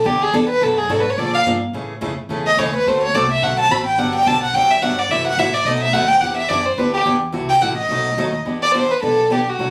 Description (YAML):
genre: acoustic string swing (jazz manouche)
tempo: 214 BPM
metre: 4/4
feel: swing 58% on 8ths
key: E minor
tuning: A4 = 440 Hz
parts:
  - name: warm violin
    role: melody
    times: 0.0-9.7 s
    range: F#4 to B5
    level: -19 LUFS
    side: equal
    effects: none
  - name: picked acoustic archtop guitar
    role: accompaniment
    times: 0.0-9.7 s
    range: B2 to A4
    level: -25 LUFS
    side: equal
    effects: none
  - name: upright bass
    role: bass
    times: 0.0-9.7 s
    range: G1 to B2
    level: -31 LUFS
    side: equal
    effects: none
room: moderate small room reverb, RT60 0.5 s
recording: recorded on a phone in the room, studio ambience, compression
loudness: -18 LUFS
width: mono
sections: 0.0-8.5 A section; 8.5-9.7 B section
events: violin solo 0.0-8.5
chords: 0.0 Em7; 0.6 Bm7; 1.2 A#7; 1.7 Amaj7; 2.9 D7; 4.0 Gmaj7; 5.1 F#m7b5; 5.7 B7; 6.2 Em7; 7.3 F#m7b5; 7.9 B7; 8.5 Em7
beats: 0.06 0.34 | 0.62 0.90 1.18 1.46 | 1.74 2.02 2.30 2.58 | 2.86 3.14 3.42 3.70 | 3.98 4.26 4.54 4.82 | 5.10 5.38 5.66 5.94 | 6.22 6.50 6.78 7.06 | 7.34 7.62 7.90 8.18 | 8.46 8.74 9.02 9.30 | 9.59